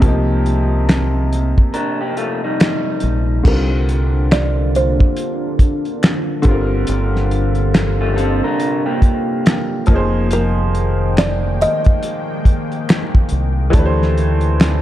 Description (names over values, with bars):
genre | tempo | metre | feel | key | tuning
lo-fi hip hop | 70 BPM | 4/4 | swing 63% on 16ths | C minor | A4 = 441 Hz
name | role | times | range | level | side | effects
clear upright piano | accompaniment | 0.0-14.8 s | C3 to C5 | -21 LUFS | left 1 dB | none
deep dub fingered electric bass | bass | 0.0-14.8 s | F1 to D2 | -17 LUFS | equal | none
cloth-damped thuddy drum kit | drums | 0.0-14.8 s | crash cymbal, finger snaps, hi-hat, kick drum, snare drum | -15 LUFS | equal | none
finger snaps | percussion | 0.9-14.8 s | none | -33 LUFS | left 2 dB | none
electric guitar through a small old amp | second line | 1.7-9.8 s | G3 to Bb4 | -21 LUFS | equal | analog delay
kalimba | melody | 3.5-13.3 s | Bb4 to Eb5 | -22 LUFS | right 1 dB | analog delay
deep dark ambient pad | sustained chords | 4.0-14.8 s | C3 to G5 | -24 LUFS | equal | chorus, built-in reverb
room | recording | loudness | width
light reverb, small room ambience | dark, warm production | -14 LUFS | side -13 dB against mid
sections
0.0-3.5 A section; 3.5-14.8 B section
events
break 1.7-3.5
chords
0.0 Cm9; 3.5 C9sus4; 6.5 Gm7; 9.9 Fm11; 13.7 D9sus4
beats
| 0.02 0.88 1.74 2.60 | 3.45 4.31 5.17 6.02 | 6.88 7.74 8.60 9.45 | 10.31 11.17 12.02 12.88 | 13.74 14.60